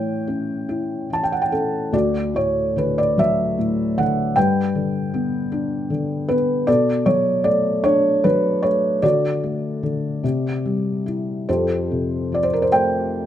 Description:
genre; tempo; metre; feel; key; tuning
classical, lyrical solo piano; 47-52 BPM (dotted quarters); 6/8; rubato; D major; A4 = 440 Hz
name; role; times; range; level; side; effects
felt-muted upright piano; solo; 0.0-13.3 s; D2 to A5; -18 LUFS; equal; none
room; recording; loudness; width
light reverb; close, detailed microphones; -18 LUFS; side -10 dB against mid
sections
0.0-11.5 A section; 11.5-13.3 B section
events
none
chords
0.0 A; 1.9 D; 4.4 G; 6.7 Bm7; 9.0 D; 10.2 C; 11.5 Fadd9

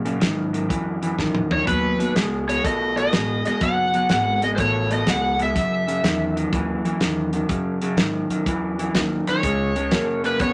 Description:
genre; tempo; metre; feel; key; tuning
electric blues shuffle; 124 BPM; 4/4; swing 67% on 8ths; unclear; A4 = 437 Hz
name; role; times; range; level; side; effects
upright bass; bass; 0.0-10.5 s; F#1 to A#2; -32 LUFS; equal; none
electric guitar through a small old amp; riff; 0.1-10.5 s; F#2 to B3; -26 LUFS; equal; spring reverb
warm soul drum kit; drums; 0.1-10.5 s; hi-hat, kick drum, snare drum, toms; -26 LUFS; equal; none
overdriven slide guitar; melody; 1.5-6.3, 9.3-10.5 s; B4 to F#5; -25 LUFS; equal; none
room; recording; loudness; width
moderate studio reverb, RT60 0.5 s; none; -22 LUFS; mono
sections
0.0-10.5 A section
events
drum fill 1.2-1.7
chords
0.0 F#7sus2; 1.7 B9; 5.6 F#5; 9.4 C#

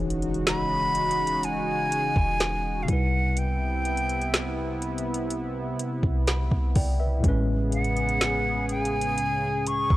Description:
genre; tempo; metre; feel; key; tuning
contemporary R&B; 62 BPM; 4/4; straight; unclear; A4 = 436 Hz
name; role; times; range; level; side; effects
mellow tine electric piano; accompaniment; 0.0-10.0 s; A2 to B5; -31 LUFS; left 1 dB; medium stereo tremolo
warm analog pad; sustained chords; 0.0-10.0 s; C3 to G#4; -31 LUFS; right 1 dB; chorus, sidechain pumping
clean 808-style bass; bass; 0.0-10.0 s; E1 to C#2; -29 LUFS; equal; none
impact; sound effects; 0.0-3.4 s; none; -40 LUFS; equal; none
smooth R&B drum kit; drums; 0.1-10.0 s; hi-hat, kick drum, snare drum; -26 LUFS; equal; none
breathy silver concert flute; melody; 0.5-10.0 s; F5 to C#6; -27 LUFS; equal; none
room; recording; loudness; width
digital ambience; dry, gritty hardware recording; -23 LUFS; side -16 dB against mid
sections
0.0-10.0 A section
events
impact 0.0-3.4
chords
0.0 Emaj13; 2.9 Cmaj7; 7.2 Amaj9

